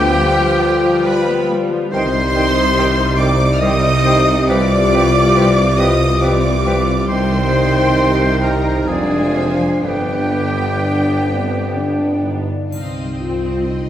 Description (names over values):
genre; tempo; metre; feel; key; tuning
classical, slow romantic movement for symphony orchestra; 60-72 BPM; 3/4; rubato; C minor; A4 = 440 Hz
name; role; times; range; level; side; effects
warm symphonic violin section; melody; 0.0-13.9 s; G5 to F6; -24 LUFS; equal; none
clear clarinet; second line; 0.0-12.4 s; B4 to D5; -26 LUFS; left 1 dB; none
small flute group; second line; 0.0-12.3 s; F5 to G5; -27 LUFS; right 2 dB; none
warm oboe; second line; 0.0-12.2 s; G4 to Eb5; -22 LUFS; right 1 dB; none
warm symphonic violin section; second line; 0.0-13.9 s; G4 to G5; -24 LUFS; left 2 dB; none
clear symphonic viola section; accompaniment; 0.0-13.9 s; D3 to F4; -24 LUFS; right 1 dB; none
warm bassoon; accompaniment; 0.0-12.4 s; D3 to F3; -24 LUFS; right 2 dB; none
mellow French horn section; sustained chords; 0.0-13.9 s; G3 to F4; -21 LUFS; left 2 dB; none
concert harp; arpeggios; 0.0-13.9 s; F2 to D5; -24 LUFS; left 4 dB; none
clear tuba; bass; 0.0-12.5 s; F1 to C2; -23 LUFS; right 2 dB; none
rich symphonic cello section; bass; 0.0-13.9 s; C2 to C3; -25 LUFS; right 2 dB; none
warm symphonic double bass section; bass; 0.0-13.9 s; F1 to C2; -22 LUFS; right 1 dB; none
triangle; percussion; 12.7-13.9 s; none; -42 LUFS; equal; none
room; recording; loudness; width
wet recital hall reverb, RT60 1.7 s; heard from further back in the room; -13 LUFS; side -11 dB against mid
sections
0.0-12.7 A section; 12.7-13.9 B section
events
none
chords
0.0 G7/D; 1.9 Cm; 4.5 G7/C; 7.1 Cm; 8.9 Ddim/F; 9.8 G; 12.7 Cm